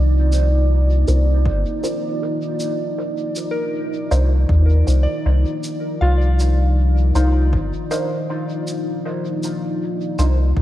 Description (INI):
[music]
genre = ambient dub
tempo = 79 BPM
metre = 4/4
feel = swing 58% on 16ths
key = C minor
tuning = A4 = 444 Hz
[part]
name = deep dark ambient pad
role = sustained chords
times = 0.0-10.6 s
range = Bb3 to D5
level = -24 LUFS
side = equal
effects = chorus, built-in reverb
[part]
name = soft synth bell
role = arpeggios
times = 0.0-10.6 s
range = Eb4 to F5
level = -29 LUFS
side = left 1 dB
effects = chorus, dub echo
[part]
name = soft dub sub bass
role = bass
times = 0.0-10.6 s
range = G1 to Eb2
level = -14 LUFS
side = equal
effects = none
[part]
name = shaker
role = drums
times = 0.3-10.4 s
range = none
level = -36 LUFS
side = right 1 dB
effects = dub echo
[part]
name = filtered dub chord stab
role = stabs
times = 1.1-10.4 s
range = D4 to C5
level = -29 LUFS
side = right 2 dB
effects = phaser, dub echo
[part]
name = electronic kick drum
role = drums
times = 1.5-10.6 s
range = none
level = -23 LUFS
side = equal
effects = none
[sound]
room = light reverb, digital ambience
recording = none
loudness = -16 LUFS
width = side -14 dB against mid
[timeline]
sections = 0.0-10.6 A section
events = none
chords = 0.0 Cm11